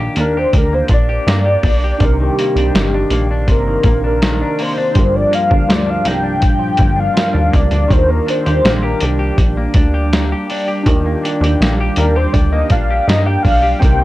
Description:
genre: indie pop, bedroom pop.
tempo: 81 BPM.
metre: 4/4.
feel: straight.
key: Eb major.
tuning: A4 = 439 Hz.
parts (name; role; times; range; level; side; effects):
semi-hollow electric guitar; accompaniment; 0.0-14.0 s; G2 to G4; -21 LUFS; left 2 dB; lush chorus, warbly pitch drift.
tine electric piano; accompaniment; 0.0-14.0 s; C4 to Bb4; -24 LUFS; right 2 dB; overdrive, fast stereo tremolo, cassette tape.
plucky analog bass; bass; 0.0-14.0 s; G1 to G2; -17 LUFS; equal; none.
soft octave-layered synth lead; melody; 0.2-14.0 s; G4 to G5; -17 LUFS; left 1 dB; analog chorus.
lo-fi sampler-style drum kit; drums; 0.2-14.0 s; hi-hat, kick drum, snare drum; -15 LUFS; equal; none.
warm analog pad; sustained chords; 7.9-14.0 s; C3 to G4; -25 LUFS; right 1 dB; chorus.
room: little or no reverb.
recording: dry, gritty hardware recording.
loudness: -12 LUFS.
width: side -16 dB against mid.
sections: 0.0-14.0 A section.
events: soft synth lead solo 0.0-14.0.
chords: 0.0 Ebmaj7; 2.0 Cm9; 5.0 Gm7; 7.9 Ebmaj7.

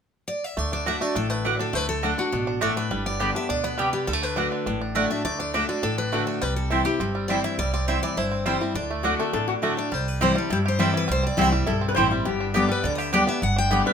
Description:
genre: bluegrass.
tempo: 205 BPM.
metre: 4/4.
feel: straight.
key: D mixolydian.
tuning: A4 = 440 Hz.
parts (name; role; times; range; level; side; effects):
picked steel-string acoustic guitar; melody; 0.3-13.8 s; F#4 to G5; -28 LUFS; left 1 dB; none.
bluegrass banjo; melody; 0.6-13.9 s; D3 to G4; -30 LUFS; right 3 dB; none.
picked steel-string acoustic guitar; accompaniment; 0.6-13.9 s; G2 to G4; -27 LUFS; left 3 dB; none.
upright bass; bass; 0.6-13.8 s; G1 to G2; -30 LUFS; right 1 dB; none.
mandolin; stabs; 0.9-13.8 s; A3 to G5; -25 LUFS; right 3 dB; none.
lap resonator guitar; second line; 9.0-13.9 s; F#4 to C5; -28 LUFS; left 5 dB; none.
room: light reverb.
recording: minimal, uncompressed stereo recording.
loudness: -22 LUFS.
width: side -7 dB against mid.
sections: 0.6-9.9 A section; 9.9-13.9 B section.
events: none.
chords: 0.0 N.C.; 0.6 D; 2.9 G; 4.1 D; 6.4 C; 8.8 D; 9.9 C; 12.3 G.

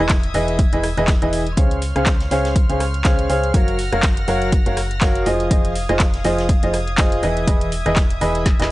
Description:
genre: piano house.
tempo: 122 BPM.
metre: 4/4.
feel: swing 56% on 16ths.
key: unclear.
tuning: A4 = 437 Hz.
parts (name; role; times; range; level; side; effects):
warm chamber string section; sustained chords; 0.0-8.7 s; Db5 to Bb6; -29 LUFS; equal; sidechain pumping.
clear upright piano; riff; 0.0-8.7 s; E3 to F5; -20 LUFS; equal; sidechain pumping.
solid FM bass; bass; 0.0-8.7 s; E1 to Db2; -23 LUFS; equal; sidechain pumping.
electronic kick drum; drums; 0.1-8.6 s; none; -17 LUFS; equal; overdrive.
garage drum kit; drums; 0.1-8.7 s; handclaps, hi-hat, rim click, snare drum; -25 LUFS; equal; none.
natural country drum kit; drums; 0.1-8.6 s; hi-hat, snare drum; -36 LUFS; right 1 dB; none.
room: small room ambience.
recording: dry, gritty hardware recording, nothing above 10.9 kHz.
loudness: -16 LUFS.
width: side -18 dB against mid.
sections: 0.0-8.7 A section.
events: drum fill 8.5.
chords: 0.0 Emaj7; 1.6 Dbmaj7; 3.5 Gbmaj7; 5.3 Fm7; 7.2 Emaj7.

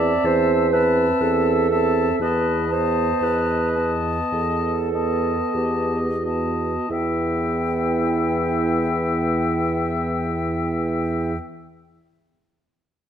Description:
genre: classical, slow romantic movement for wind quintet.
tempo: 42-64 BPM.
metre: 4/4.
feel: rubato.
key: E minor.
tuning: A4 = 440 Hz.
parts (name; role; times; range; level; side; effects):
silver concert flute; melody; 0.0-11.4 s; G5 to A5; -29 LUFS; left 9 dB; none.
warm oboe; second line; 0.0-11.4 s; D#5 to E5; -28 LUFS; left 3 dB; none.
mellow clarinet; accompaniment; 0.0-11.3 s; E4 to D5; -24 LUFS; right 5 dB; none.
warm French horn; accompaniment; 0.0-11.4 s; B3 to C4; -28 LUFS; equal; none.
dark bassoon; bass; 0.0-11.4 s; E2; -24 LUFS; right 1 dB; none.
room: moderate recital hall reverb, RT60 1.4 s.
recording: none.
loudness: -19 LUFS.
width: side -9 dB against mid.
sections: 0.0-6.9 A section; 6.9-11.8 B section.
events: slowing down 0.0-6.9.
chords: 0.0 Am/E; 2.2 B7/E; 6.9 Em.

